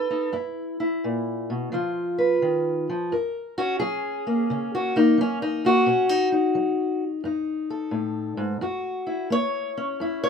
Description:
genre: acoustic country blues, solo or duo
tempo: 87 BPM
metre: 4/4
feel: swing 65% on 8ths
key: F# mixolydian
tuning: A4 = 441 Hz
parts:
  - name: fingerpicked steel-string acoustic guitar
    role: solo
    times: 0.0-10.3 s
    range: F#2 to C#5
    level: -22 LUFS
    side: left 1 dB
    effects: none
room: light reverb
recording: minimal, uncompressed stereo recording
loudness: -22 LUFS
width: side -6 dB against mid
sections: 0.0-3.1 A section; 3.1-10.3 B section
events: steel-string acoustic guitar solo 3.1-10.3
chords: 0.3 F#7; 1.7 C#7; 3.1 F#; 5.9 B7; 8.6 F#7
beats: | 0.34 1.03 1.73 2.42 | 3.11 3.80 4.49 5.18 | 5.87 6.56 7.25 7.94 | 8.63 9.32 10.01

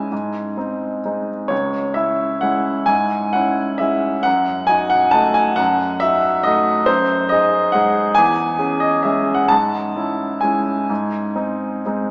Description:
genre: classical, piano waltz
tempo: 121-147 BPM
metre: 3/4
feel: rubato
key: C# minor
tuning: A4 = 440 Hz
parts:
  - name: clear baby grand piano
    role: solo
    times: 0.0-12.1 s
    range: C#2 to A5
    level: -15 LUFS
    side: equal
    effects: none
room: wet church reverb, RT60 3.1 s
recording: recorded in a church or concert hall, small speaker sound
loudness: -15 LUFS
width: side -30 dB against mid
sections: 0.0-12.1 A section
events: none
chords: 0.1 G#; 1.5 C#m; 4.3 D#dim/F#; 6.9 G#7/F#; 8.2 C#m/E; 9.5 C#m/G#; 10.9 G#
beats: | 0.11 0.57 1.04 | 1.51 1.97 2.43 | 2.90 3.35 3.81 | 4.26 4.70 5.15 | 5.59 6.02 6.46 | 6.88 7.30 7.73 | 8.16 8.59 9.04 | 9.51 9.96 10.43 | 10.90 11.36 11.85

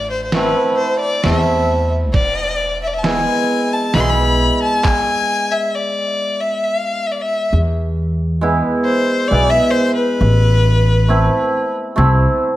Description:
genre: klezmer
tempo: 67 BPM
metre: 3/4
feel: straight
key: unclear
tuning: A4 = 436 Hz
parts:
  - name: clear violin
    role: melody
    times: 0.0-11.7 s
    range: B4 to C6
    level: -18 LUFS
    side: left 2 dB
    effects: none
  - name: upright bass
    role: bass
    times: 0.0-12.2 s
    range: E1 to E2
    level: -16 LUFS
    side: equal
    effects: none
  - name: cimbalom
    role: accompaniment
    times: 0.3-12.4 s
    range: G#3 to E4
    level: -19 LUFS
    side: right 2 dB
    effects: none
  - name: lo-fi sampler-style drum kit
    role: drums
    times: 0.3-5.1 s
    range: handclaps, kick drum, ride cymbal, snare drum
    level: -21 LUFS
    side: right 1 dB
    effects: none
room: moderate recital hall reverb, RT60 1.4 s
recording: none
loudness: -14 LUFS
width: side -15 dB against mid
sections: 0.0-7.5 A section; 7.5-12.6 B section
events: stop 4.8-7.5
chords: 0.0 Am; 2.2 E; 10.2 Am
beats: 0.35 1.25 | 2.15 3.05 3.95 | 4.85 5.75 6.64 | 7.53 8.43 9.32 | 10.21 11.10 11.99

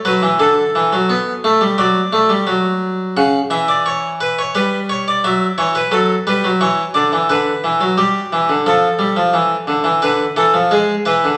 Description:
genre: classical, baroque-style two-part invention for harpsichord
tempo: 87 BPM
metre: 4/4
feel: straight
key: G major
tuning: A4 = 440 Hz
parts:
  - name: harpsichord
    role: solo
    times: 0.1-11.4 s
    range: C#3 to F#5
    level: -16 LUFS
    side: equal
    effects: none
room: wet recital hall reverb, RT60 1.3 s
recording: vinyl crackle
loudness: -16 LUFS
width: mono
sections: 0.0-3.2 A section; 3.2-11.4 B section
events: none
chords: 0.4 D5; 1.8 D/F#; 3.2 C#madd11; 4.5 Em69; 5.9 D/F#; 7.3 G/D; 8.7 Dm/F; 10.0 Dm; 10.7 E7/G#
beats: | 0.40 1.09 1.78 2.47 | 3.16 3.86 4.55 5.24 | 5.92 6.61 7.29 7.97 | 8.65 9.33 10.01 10.71

